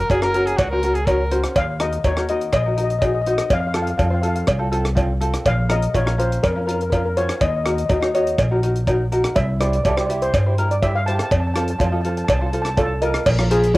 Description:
calypso; 123 BPM; 4/4; straight; Bb minor; A4 = 440 Hz
steel pan; melody; 0.0-13.8 s; F4 to A5; -23 LUFS; left 2 dB
bright trumpet; second line; 0.0-1.4 s; Gb4 to Bb4; -23 LUFS; equal; cassette tape
upright bass; bass; 0.0-13.8 s; Gb1 to G2; -22 LUFS; equal
tenor ukulele; accompaniment; 0.1-13.8 s; C4 to Eb5; -23 LUFS; equal; cassette tape
tight funk drum kit; drums; 0.1-13.8 s; crash cymbal, hi-hat, kick drum, rim click; -25 LUFS; equal; cassette tape
cowbell; percussion; 0.1-13.8 s; -22 LUFS; right 1 dB
small room ambience; home recording on cassette; -17 LUFS; side -19 dB against mid
0.0-13.3 A section
0.0 Gb; 1.6 Ebm; 3.5 F; 5.5 Bbmadd9; 7.4 Ebm; 9.4 C; 11.3 F; 13.3 Bbm

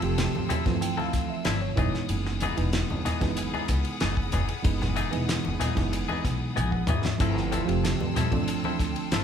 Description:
electric jazz fusion; 94 BPM; 4/4; straight; A4 = 440 Hz
reed electric piano; accompaniment; 0.0-9.2 s; E3 to A5; -30 LUFS; right 5 dB; overdrive
rich studio string section; sustained chords; 0.0-9.2 s; G#4 to E6; -37 LUFS; left 2 dB
semi-hollow electric guitar; stabs; 0.0-9.2 s; E3 to A4; -34 LUFS; left 6 dB
upright bass; bass; 0.0-9.2 s; E1 to D2; -30 LUFS; left 1 dB
damped 70s drum kit; drums; 0.0-9.2 s; crash cymbal, hi-hat, kick drum, ride cymbal, snare drum, toms; -30 LUFS; equal
congas; percussion; 0.4-8.8 s; -33 LUFS; left 1 dB
moderate large studio reverb, RT60 1.1 s; band playing live in one room; -24 LUFS; side -8 dB against mid
0.0-9.2 A section
reed electric piano fill 0.2-2.1, 6.2-7.2; drum fill 6.6-7.2
0.0 G13sus4; 1.8 F#13sus4; 7.2 G13sus4

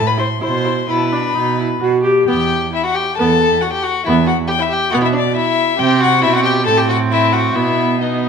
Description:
quick classical-period movement for string quartet; 127-139 BPM; 4/4; rubato; E minor; A4 = 441 Hz
warm violin; melody; 0.0-8.3 s; D5 to C6; -19 LUFS; left 8 dB
warm cello; bass; 0.0-8.3 s; E2 to C3; -20 LUFS; right 5 dB
warm violin; second line; 0.1-8.3 s; D4 to C5; -18 LUFS; left 2 dB
rich viola; accompaniment; 0.2-8.3 s; B3 to G4; -18 LUFS; right 2 dB
moderate recital hall reverb, RT60 1.3 s; -13 LUFS; side -6 dB against mid
0.0-2.3 A section; 2.3-8.3 B section
0.4 E5/B; 1.4 B; 2.3 E5; 5.8 Cmaj7#11; 6.7 Am6; 7.6 B

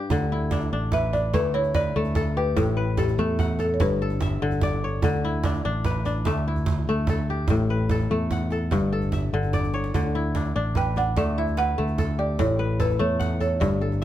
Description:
west african traditional, West African string and xylophone music; 98 BPM (dotted quarters); 12/8; straight; D major; A4 = 440 Hz
kora; arpeggios; 0.0-14.0 s; G2 to F#5; -26 LUFS; left 3 dB
fingered electric bass; bass; 0.1-14.0 s; G1 to E2; -26 LUFS; equal
djembe; percussion; 0.1-14.0 s; -28 LUFS; right 3 dB
balafon; melody; 0.9-4.2, 10.8-14.0 s; G4 to G5; -26 LUFS; right 1 dB
light reverb; close, detailed microphones; -22 LUFS; side -12 dB against mid
0.1-14.0 A section
drum fill 9.6-9.9
0.1 D5; 2.6 A5; 3.8 G; 5.0 D5; 7.5 A5; 8.7 G5; 9.9 D; 12.4 A

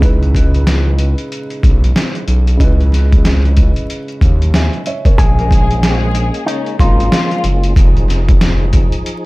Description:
hip hop, boom-bap hip-hop; 93 BPM; 4/4; swing 60% on 16ths; Bb minor; A4 = 440 Hz
dark upright piano; accompaniment; 0.0-5.2 s; Db3 to Ab5; -22 LUFS; right 2 dB; cassette tape, high-pass filter, low-pass filter
smooth synth bass; bass; 0.0-8.9 s; F1 to Eb2; -13 LUFS; equal
trip hop sampler-style drum kit; drums; 0.0-9.2 s; hi-hat, kick drum, snare drum; -13 LUFS; equal; overdrive
electric guitar with an envelope filter; melody; 5.2-7.7 s; Eb4 to Ab4; -20 LUFS; left 1 dB; high-pass filter, low-pass filter, plate reverb
percussive tonewheel organ; sustained chords; 5.2-9.3 s; F3 to Ab4; -24 LUFS; equal; overdrive, chorus vibrato, stopped rotary speaker, high-pass filter, low-pass filter
rich studio string section; stabs; 5.4-7.4 s; Db3 to Bb4; -23 LUFS; left 2 dB; high-pass filter, low-pass filter, plate reverb, ping-pong delay
little or no reverb; dark, warm production, vinyl crackle; -10 LUFS; side -22 dB against mid
0.0-5.2 A section; 5.2-9.3 B section
0.0 Dbm7; 5.2 Bbm7; 7.8 Fm7

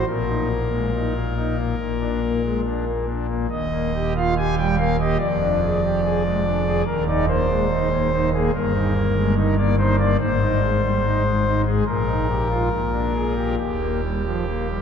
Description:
classical, chorale-style piece for pipe organ; 71 BPM; 4/4; rubato; Eb major; A4 = 442 Hz
pipe organ, foundations; solo; 0.0-14.8 s; Eb1 to Ab5; -19 LUFS; equal
wet cathedral reverb, RT60 4.7 s; -19 LUFS; side -7 dB against mid
0.0-14.8 A section
0.1 Eb5/Bb; 1.8 Bb; 3.5 Eb; 5.2 Ddim/F; 6.9 Eb5; 8.5 Eb/G; 10.2 Abmaj7; 11.9 Eb/Bb; 12.7 Bb7; 13.6 Eb

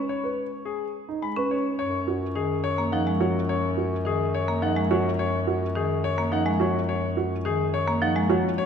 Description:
classical, minimalist pattern music; 106 BPM; 3/4; straight; F# major; A4 = 440 Hz
bright concert grand piano; melody; 0.1-8.7 s; G#4 to B5; -29 LUFS; left 7 dB
dark baby grand piano; arpeggios; 0.2-8.5 s; D#4 to B4; -29 LUFS; right 6 dB
marimba with hard mallets; accompaniment; 1.2-8.3 s; D#3 to C#4; -28 LUFS; right 1 dB
warm bass clarinet; bass; 1.8-8.7 s; F#2; -28 LUFS; left 1 dB
wet concert hall reverb, RT60 2.2 s; recorded in a church or concert hall; -23 LUFS; side -7 dB against mid
0.0-1.8 A section; 1.8-8.7 B section
0.0 G#m; 1.8 F#5

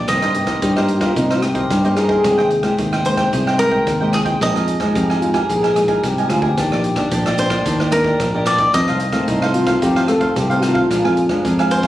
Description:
samba and choro; 111 BPM; 4/4; straight; Eb major; A4 = 440 Hz
cavaquinho; accompaniment; 0.0-11.9 s; D4 to Ab5; -23 LUFS; right 3 dB
nylon-string guitar; accompaniment; 0.0-11.9 s; F2 to G4; -22 LUFS; left 2 dB
cavaquinho; melody; 0.1-11.9 s; Ab4 to Eb5; -20 LUFS; equal
fingered electric bass; bass; 0.1-11.9 s; Bb1 to G2; -20 LUFS; equal
open jazz drum kit; drums; 0.1-11.9 s; hi-hat, kick drum, rim click; -25 LUFS; equal
mellow trombone; second line; 0.6-11.6 s; Eb4 to A4; -19 LUFS; left 1 dB
moderate studio reverb, RT60 0.8 s; recorded on a phone in the room, studio reverb, compression; -14 LUFS; side -14 dB against mid
0.0-11.9 A section
0.1 Cm7; 2.2 Abmaj7/C; 4.4 Bb7sus4; 6.6 Ebmaj7; 8.7 F7; 10.9 Bb7

